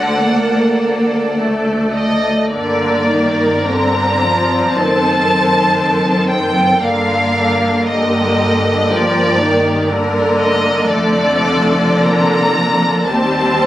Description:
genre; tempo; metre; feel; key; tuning
classical, slow romantic movement for string orchestra; 49-61 BPM; 4/4; rubato; G minor; A4 = 440 Hz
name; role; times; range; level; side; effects
rich chamber violin section; melody; 0.0-13.7 s; D5 to Bb5; -17 LUFS; equal; none
rich chamber violin section; second line; 0.0-13.7 s; G4 to D5; -21 LUFS; left 1 dB; none
rich chamber viola section; accompaniment; 0.0-13.7 s; D3 to C4; -16 LUFS; equal; none
dark symphonic double bass section; bass; 0.0-13.7 s; F1 to Eb2; -24 LUFS; equal; none
warm symphonic cello section; bass; 0.0-13.7 s; D2 to G2; -22 LUFS; equal; none
room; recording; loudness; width
light reverb; recorded on a phone in the room, club reverb, compression; -12 LUFS; side -13 dB against mid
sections
0.0-13.7 A section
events
none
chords
0.0 D; 2.5 Gm; 4.7 F#dim7; 6.8 Gm; 10.9 Dm/F; 13.1 Cm/Eb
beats
0.23 1.38 | 2.50 3.68 4.75 5.79 | 6.83 7.87 8.89 9.88 | 10.90 12.02 13.07

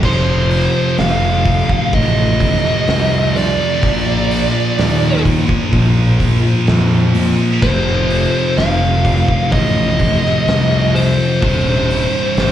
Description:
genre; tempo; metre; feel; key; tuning
stoner and doom metal; 63 BPM; 4/4; straight; unclear; A4 = 440 Hz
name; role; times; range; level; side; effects
fuzz lead guitar; melody; 0.0-12.5 s; C5 to F5; -18 LUFS; right 1 dB; distortion, slapback echo, tape echo
tonewheel organ; sustained chords; 0.0-12.5 s; C3 to C5; -29 LUFS; equal; none
heavy high-gain guitar; riff; 0.0-12.5 s; C2 to Bb3; -23 LUFS; equal; distortion
thick fuzz guitar; riff; 0.0-12.5 s; C2 to Bb3; -19 LUFS; left 4 dB; distortion
thick fuzz guitar; riff; 0.0-12.5 s; C2 to Bb3; -22 LUFS; right 8 dB; distortion
fuzz fingered electric bass; bass; 0.0-12.5 s; Eb1 to F2; -18 LUFS; equal; overdrive
oversized low-tuned drum kit; drums; 0.0-12.5 s; crash cymbal, hi-hat, kick drum, snare drum; -20 LUFS; equal; none
room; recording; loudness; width
light reverb; live gig heard through the venue's PA, club reverb; -12 LUFS; side -11 dB against mid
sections
0.0-12.5 A section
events
none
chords
0.0 F; 3.8 Bb; 7.6 F; 11.4 Cm/Eb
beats
| 0.03 0.98 1.93 2.88 | 3.83 4.78 5.73 6.68 | 7.63 8.58 9.53 10.48 | 11.43 12.38

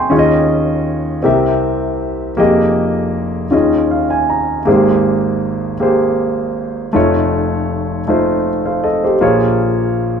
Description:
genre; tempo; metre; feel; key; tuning
gospel; 53 BPM (dotted quarters); 6/8; straight; Ab major; A4 = 439 Hz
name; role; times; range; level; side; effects
warm grand piano; solo; 0.0-10.2 s; F1 to Eb6; -12 LUFS; equal; none
room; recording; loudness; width
light reverb; band playing live in one room; -13 LUFS; side -7 dB against mid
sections
0.0-10.2 A section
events
grand piano fill 3.5-4.7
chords
0.1 Eb9sus4; 1.3 C7; 2.4 Fm11; 3.5 Eb9sus4; 4.7 Abmaj9; 6.9 F7b13; 9.2 Bbm7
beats
| 0.11 1.25 | 2.39 3.53 | 4.67 5.81 | 6.95 8.08 | 9.22

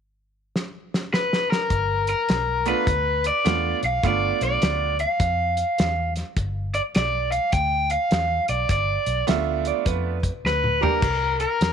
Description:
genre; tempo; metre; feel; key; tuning
electric blues shuffle; 103 BPM; 4/4; swing 64% on 8ths; G mixolydian; A4 = 440 Hz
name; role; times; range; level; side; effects
warm soul drum kit; drums; 0.6-11.7 s; crash cymbal, hi-hat, kick drum, snare drum, toms; -25 LUFS; equal; none
raw garage guitar; melody; 1.1-11.7 s; Bb4 to G5; -22 LUFS; left 1 dB; overdrive
vintage muted fingered electric bass; bass; 1.7-11.7 s; G1 to F2; -27 LUFS; left 1 dB; none
tack piano; accompaniment; 2.7-4.9, 9.3-11.0 s; G3 to G4; -27 LUFS; right 14 dB; none
clean lap steel guitar; second line; 9.3-10.3 s; B4 to E5; -28 LUFS; right 12 dB; none
room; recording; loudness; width
small room ambience; 1960s-style stereo, faint mains hum; -20 LUFS; side -7 dB against mid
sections
0.0-1.7 A section; 1.7-11.7 B section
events
drum fill 0.5-1.7, 10.4-11.0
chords
0.0 N.C.; 1.7 G9; 11.0 C7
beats
0.54 1.12 | 1.70 2.29 2.87 3.45 | 4.03 4.62 5.20 5.78 | 6.36 6.95 7.53 8.11 | 8.69 9.28 9.86 10.44 | 11.02 11.60

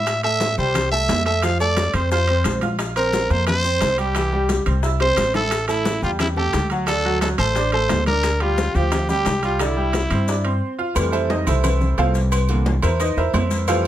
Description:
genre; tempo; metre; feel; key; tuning
latin, salsa; 176 BPM; 4/4; straight; unclear; A4 = 439 Hz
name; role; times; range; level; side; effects
growling trumpet; melody; 0.0-10.6 s; E4 to F5; -22 LUFS; equal; none
bright concert grand piano; accompaniment; 0.0-13.9 s; D3 to F6; -24 LUFS; right 2 dB; none
upright bass; bass; 0.0-13.9 s; A1 to A2; -22 LUFS; equal; none
bongos and cowbell; percussion; 0.1-13.8 s; none; -29 LUFS; left 6 dB; none
congas; percussion; 0.1-13.9 s; none; -28 LUFS; left 2 dB; none
maracas; percussion; 0.1-13.8 s; none; -36 LUFS; left 6 dB; none
timbales and agogo bells; percussion; 0.1-13.9 s; none; -29 LUFS; right 6 dB; none
room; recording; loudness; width
light reverb; close, detailed microphones; -17 LUFS; side -12 dB against mid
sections
0.0-11.0 A section; 11.0-13.9 B section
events
drum fill 5.0-5.5; break 10.6-11.0; grand piano solo 11.0-13.9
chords
0.1 Am7; 1.4 F; 2.8 Bbsus2; 4.2 C; 5.5 A5; 6.9 D; 8.2 Cadd9; 11.0 Fmaj7; 12.3 C7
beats
| 0.07 0.41 0.75 1.09 | 1.43 1.77 2.11 2.45 | 2.79 3.13 3.47 3.81 | 4.15 4.49 4.83 5.17 | 5.51 5.85 6.19 6.53 | 6.88 7.21 7.56 7.90 | 8.24 8.58 8.92 9.26 | 9.60 9.94 10.28 10.62 | 10.96 11.30 11.64 11.98 | 12.32 12.66 13.00 13.34 | 13.68

